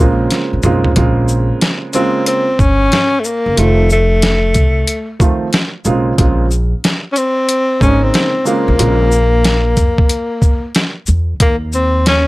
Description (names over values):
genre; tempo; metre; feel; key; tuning
hip hop, jazz-hop; 92 BPM; 4/4; swing 64% on 16ths; unclear; A4 = 441 Hz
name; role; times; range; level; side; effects
breathy tenor saxophone; melody; 0.0-12.3 s; A3 to Db4; -14 LUFS; left 1 dB; none
warm upright piano; accompaniment; 0.0-9.1 s; Db3 to F4; -16 LUFS; right 3 dB; none
upright bass; bass; 0.0-12.3 s; F1 to F2; -14 LUFS; equal; none
boom bap sampler-style drum kit; drums; 0.3-12.3 s; hi-hat, kick drum, shaker, snare drum, toms; -14 LUFS; equal; none
room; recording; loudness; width
light reverb; none; -11 LUFS; side -19 dB against mid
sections
1.0-11.4 A section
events
drum fill 0.3-1.0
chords
0.0 Bbm9; 3.6 F7; 6.2 Bbm9; 11.4 Eb7(no3)